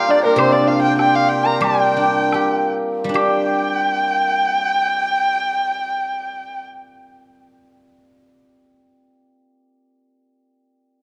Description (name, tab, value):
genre	chinese traditional, Chinese chamber ensemble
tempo	68-101 BPM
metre	2/4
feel	rubato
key	G yu mode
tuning	A4 = 441 Hz
part	dark erhu	melody	0.0-6.6 s	Bb4 to Bb5	-22 LUFS	equal	none
part	bright reedy large dizi	second line	0.0-6.7 s	Bb4 to Bb5	-24 LUFS	equal	none
part	hammered dulcimer	second line	0.0-6.6 s	Bb3 to C5	-23 LUFS	equal	none
part	guzheng	accompaniment	0.0-9.1 s	C3 to G4	-25 LUFS	equal	none
part	woodblock	percussion	0.4-3.6 s	none	-29 LUFS	equal	none
room	moderate concert hall reverb, RT60 2.2 s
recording	dark, warm production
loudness	-18 LUFS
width	mono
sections	0.0-3.1 A section; 3.1-6.6 B section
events	slowing down 0.4-3.1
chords	none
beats	| 0.38 0.98 | 1.62 2.33 | 3.15 4.02 | 4.87 5.72